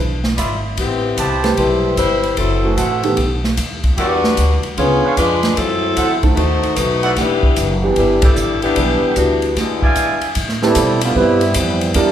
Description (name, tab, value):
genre	jazz, big band swing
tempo	150 BPM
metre	4/4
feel	swing 65% on 8ths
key	E minor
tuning	A4 = 440 Hz
part	upright bass	bass	0.0-12.1 s	E1 to B2	-21 LUFS	equal	none
part	swinging big-band drum kit	drums	0.2-12.1 s	hi-hat, kick drum, ride cymbal, snare drum	-20 LUFS	equal	none
part	mellow trumpet section	stabs	0.4-10.3 s	D4 to B5	-23 LUFS	right 2 dB	none
part	warm saxophone section	melody	0.8-10.2 s	E3 to C#5	-17 LUFS	left 3 dB	none
part	warm baby grand piano	accompaniment	1.4-12.1 s	D3 to B4	-19 LUFS	right 3 dB	none
part	clear trombone section	second line	10.6-12.1 s	E3 to A4	-16 LUFS	right 2 dB	none
room	wet recital hall reverb, RT60 1.5 s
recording	recorded in a church or concert hall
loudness	-13 LUFS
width	side -10 dB against mid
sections	0.0-10.4 A section; 10.4-12.1 B section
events	band accent 8.2; trombone section solo 10.4-12.1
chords	0.0 E7b9; 0.8 Am9; 2.4 F#m7b5; 3.2 B; 4.0 Em9; 4.8 C#7b9; 5.6 F#m7b5; 6.4 B7b9; 7.2 Em7; 9.6 E7b9; 10.4 Am9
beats	0.37 | 0.77 1.17 1.57 1.97 | 2.37 2.77 3.17 3.57 | 3.97 4.37 4.77 5.17 | 5.57 5.97 6.37 6.77 | 7.17 7.57 7.97 8.37 | 8.77 9.17 9.57 9.96 | 10.36 10.76 11.16 11.56 | 11.95